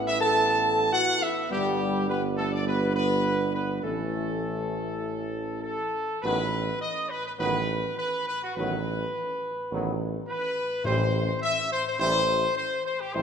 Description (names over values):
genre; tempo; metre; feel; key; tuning
classical; 104 BPM; 4/4; straight; unclear; A4 = 439 Hz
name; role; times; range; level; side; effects
mellow trombone section; sustained chords; 0.0-13.2 s; D#3 to C#4; -34 LUFS; right 2 dB; none
warm tuba; bass; 0.0-13.2 s; G1 to A1; -32 LUFS; right 3 dB; none
bright trumpet section; melody; 0.1-13.2 s; F#4 to A5; -27 LUFS; equal; none
warm French horn section; sustained chords; 0.1-13.2 s; G3 to A4; -32 LUFS; left 3 dB; none
timpani; percussion; 10.8-11.7 s; A2; -32 LUFS; left 2 dB; none
room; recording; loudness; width
wet scoring stage reverb, RT60 2.0 s; minimal, uncompressed stereo recording; -24 LUFS; side -7 dB against mid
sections
0.0-6.2 A section; 6.2-13.2 B section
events
none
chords
0.0 Asus2; 1.5 G; 3.8 A; 6.2 B/A; 10.8 C/A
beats
0.36 0.93 | 1.50 2.08 2.65 3.24 | 3.83 4.43 5.03 5.63 | 6.24 6.82 7.39 7.97 | 8.57 9.14 9.71 10.28 | 10.85 11.42 11.99 12.56 | 13.14